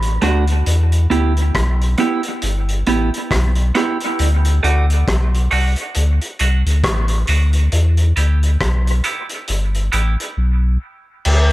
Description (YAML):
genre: dub reggae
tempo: 68 BPM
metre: 4/4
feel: swing 58% on 16ths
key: E minor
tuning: A4 = 439 Hz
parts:
  - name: warm sub bass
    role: bass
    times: 0.0-11.5 s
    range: G1 to E2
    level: -15 LUFS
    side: equal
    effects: none
  - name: vintage drum kit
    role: drums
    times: 0.0-11.5 s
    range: crash cymbal, hi-hat, kick drum, rim click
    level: -23 LUFS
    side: equal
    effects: none
  - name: semi-hollow electric guitar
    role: accompaniment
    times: 0.2-10.1 s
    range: A3 to G4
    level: -21 LUFS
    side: right 4 dB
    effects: high-pass filter, dub echo
room: light reverb, small room ambience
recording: echo-heavy mix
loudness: -14 LUFS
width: side -17 dB against mid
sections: 0.0-11.2 A section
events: filter sweep on clean electric guitar 0.7-11.2; drums muted 10.4-11.2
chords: 0.0 D; 0.7 Em; 4.2 D; 7.7 Em